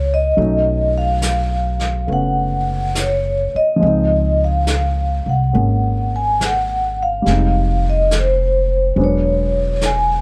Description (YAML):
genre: jazz ballad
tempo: 70 BPM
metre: 4/4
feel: swing 68% on 8ths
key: unclear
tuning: A4 = 440 Hz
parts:
  - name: vibraphone with soft mallets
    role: melody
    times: 0.0-10.2 s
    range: C5 to Ab5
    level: -21 LUFS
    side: equal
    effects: none
  - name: warm baby grand piano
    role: accompaniment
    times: 0.0-10.2 s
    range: F3 to Eb4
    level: -25 LUFS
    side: equal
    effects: none
  - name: upright bass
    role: bass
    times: 0.0-10.2 s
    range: E1 to Db2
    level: -21 LUFS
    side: equal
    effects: none
  - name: vintage brush drum kit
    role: drums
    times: 0.4-10.2 s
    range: brushed snare drum, hi-hat, snare drum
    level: -29 LUFS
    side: equal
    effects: none
room: little or no reverb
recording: none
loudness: -17 LUFS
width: mono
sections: 0.0-10.2 A section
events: none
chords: 0.4 B9; 3.8 Dbmaj9; 7.3 Fm9; 9.0 E9